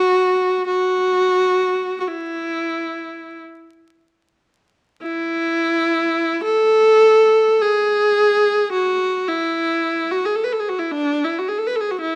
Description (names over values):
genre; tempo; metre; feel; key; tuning
classical, free, expressive piece for unaccompanied viola; 32-56 BPM; 3/4; rubato; unclear; A4 = 441 Hz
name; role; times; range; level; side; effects
rich viola; solo; 0.0-12.2 s; D4 to B4; -18 LUFS; equal; none
room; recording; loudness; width
moderate recital hall reverb, RT60 1.4 s; close, detailed microphones, vinyl crackle; -18 LUFS; mono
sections
0.0-5.0 A section; 5.0-12.2 B section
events
none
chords
none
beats
| 0.69 2.08 3.42 | 5.02 6.43 7.60 | 8.72 9.82 10.91 | 12.00